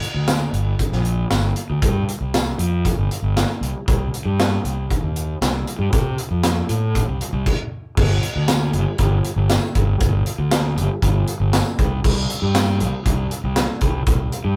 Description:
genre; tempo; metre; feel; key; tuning
indie rock; 118 BPM; 4/4; straight; G minor; A4 = 440 Hz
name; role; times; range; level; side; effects
big rock drum kit; drums; 0.0-14.4 s; crash cymbal, hi-hat, kick drum, snare drum, tambourine; -23 LUFS; equal; none
fuzz fingered electric bass; bass; 0.1-14.6 s; G1 to C3; -22 LUFS; equal; overdrive
room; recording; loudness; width
moderate booth ambience, RT60 0.2 s; rough rehearsal-room recording, warm saturation; -20 LUFS; mono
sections
0.0-8.0 A section; 8.0-14.6 B section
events
none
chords
none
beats
0.28 0.79 1.30 | 1.82 2.33 2.85 3.36 | 3.87 4.39 4.90 5.41 | 5.92 6.44 6.95 7.46 | 7.97 8.48 8.99 9.50 | 10.01 10.52 11.02 11.53 | 12.04 12.55 13.05 13.56 | 14.07

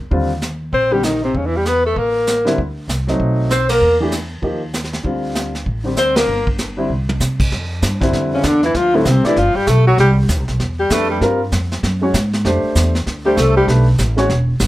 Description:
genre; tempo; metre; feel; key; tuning
jazz, small-group swing and bop; 195 BPM; 4/4; swing 62% on 8ths; unclear; A4 = 441 Hz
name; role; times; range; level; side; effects
upright bass; bass; 0.0-14.7 s; E1 to C3; -18 LUFS; equal; none
warm upright piano; accompaniment; 0.1-14.3 s; D3 to D5; -19 LUFS; equal; none
vintage brush drum kit; drums; 0.1-14.7 s; brushed snare drum, crash cymbal, hi-hat, kick drum, ride cymbal, snare drum, toms; -22 LUFS; equal; none
breathy alto saxophone; melody; 0.7-11.2, 13.3-13.7 s; A3 to C5; -16 LUFS; left 2 dB; plate reverb
bright tenor saxophone; second line; 0.7-11.2, 13.3-13.7 s; A2 to C4; -21 LUFS; right 4 dB; none
room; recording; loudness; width
light reverb; none; -14 LUFS; side -16 dB against mid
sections
0.0-7.5 A section; 7.5-14.7 B section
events
band accent 3.7, 6.1; drum fill 6.9-7.2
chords
0.1 Eb69; 1.3 Emadd11; 2.0 A5; 2.6 D5; 3.2 B7b9; 3.8 Em7b5; 4.4 Ebadd9; 5.0 Dm7; 6.3 G5; 6.9 N.C.; 7.5 Fsus2; 8.7 D5; 9.4 G; 10.0 Cmaj7; 11.2 Gm7; 11.8 F#sus2; 12.4 Fmaj7; 13.7 Bm7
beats
| 0.12 0.42 0.73 1.04 | 1.35 1.65 1.96 2.27 | 2.58 2.88 3.19 3.50 | 3.81 4.12 4.43 4.74 | 5.04 5.35 5.66 5.97 | 6.28 6.59 6.90 7.20 | 7.51 7.82 8.13 8.44 | 8.75 9.06 9.36 9.67 | 9.98 10.29 10.60 10.91 | 11.21 11.52 11.83 12.14 | 12.45 12.76 13.06 13.37 | 13.68 13.99 14.29 14.60

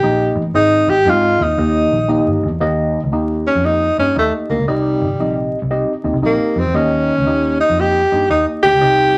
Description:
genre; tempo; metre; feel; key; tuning
uptempo 1960s-style soul; 116 BPM; 4/4; swing 66% on 8ths; Eb mixolydian; A4 = 440 Hz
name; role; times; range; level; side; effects
breathy tenor saxophone; melody; 0.0-9.2 s; G3 to G4; -17 LUFS; equal; none
tine electric piano; accompaniment; 0.0-9.2 s; Ab2 to Eb5; -21 LUFS; equal; phaser
vintage muted picked electric bass; bass; 0.0-9.1 s; G1 to Ab2; -24 LUFS; equal; none
room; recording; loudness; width
wet studio reverb, RT60 0.5 s; vinyl crackle; -16 LUFS; mono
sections
0.0-2.6 A section; 2.6-9.2 B section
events
tenor saxophone solo 2.6-9.2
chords
0.0 Eb; 0.5 Ab; 1.6 Eb; 4.7 Cm; 6.7 Eb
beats
0.02 | 0.53 1.05 1.57 2.08 | 2.60 3.12 3.64 4.15 | 4.67 5.19 5.71 6.22 | 6.74 7.26 7.78 8.30 | 8.81

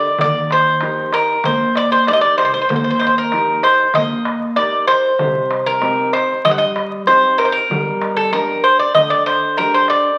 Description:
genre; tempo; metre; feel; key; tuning
greek folk, Greek bouzouki band; 96 BPM; 4/4; straight; unclear; A4 = 440 Hz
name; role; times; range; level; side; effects
Greek bouzouki; melody; 0.0-10.2 s; A4 to F#5; -16 LUFS; equal; none
fingerpicked steel-string acoustic guitar; accompaniment; 0.0-10.1 s; C3 to Bb4; -27 LUFS; equal; none
upright bass; bass; 0.2-9.2 s; G1 to G2; -36 LUFS; equal; none
darbuka; percussion; 0.2-10.0 s; none; -27 LUFS; equal; none
room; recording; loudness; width
wet large studio reverb, RT60 1.1 s; very old 78 rpm record, vinyl crackle; -16 LUFS; mono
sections
0.0-10.2 A section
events
none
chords
0.2 Eb; 5.2 Cm; 7.7 Gm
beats
| 0.20 0.82 1.45 2.07 | 2.70 3.32 3.95 4.58 | 5.20 5.83 6.45 7.08 | 7.70 8.33 8.95 9.58

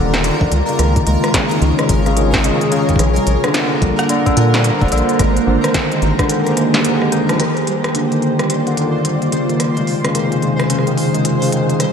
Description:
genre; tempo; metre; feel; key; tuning
IDM; 109 BPM; 4/4; swing 62% on 16ths; unclear; A4 = 439 Hz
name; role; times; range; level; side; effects
glassy FM pad; sustained chords; 0.0-11.9 s; C3 to D5; -19 LUFS; right 1 dB; ensemble chorus, built-in reverb, vintage 12-bit sampler grit, shimmer reverb
barky tine electric piano; arpeggios; 0.0-11.9 s; Db3 to Eb4; -18 LUFS; left 2 dB; overdrive, phaser, low-pass filter, analog delay, shimmer reverb
rubbery square bass; bass; 0.0-6.1 s; Eb1 to Bb2; -16 LUFS; equal; none
pulsing gated texture; texture; 0.0-11.9 s; Bb4 to C6; -26 LUFS; equal; chorus, built-in reverb, shimmer reverb
industrial drum kit; drums; 0.1-11.9 s; hi-hat, rim click, snare drum; -21 LUFS; equal; analog delay
electronic kick drum; drums; 0.4-6.3 s; none; -18 LUFS; equal; none
room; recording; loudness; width
wet lush hall reverb, RT60 2.7 s; dreamy mix soaked in reverb; -13 LUFS; side -7 dB against mid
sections
0.0-7.4 A section; 7.4-11.9 B section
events
drum fill 7.0-7.4; band accent 7.3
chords
0.0 Ebmaj9; 0.5 Dbmaj9; 3.0 Bbadd9; 5.2 Abmaj9; 7.4 Ebmaj9; 9.3 Dbmaj9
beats
0.24 | 0.79 1.34 1.89 2.44 | 2.99 3.54 4.09 4.64 | 5.20 5.75 6.29 6.85 | 7.40 7.95 8.50 9.05 | 9.60 10.15 10.70 11.25 | 11.80

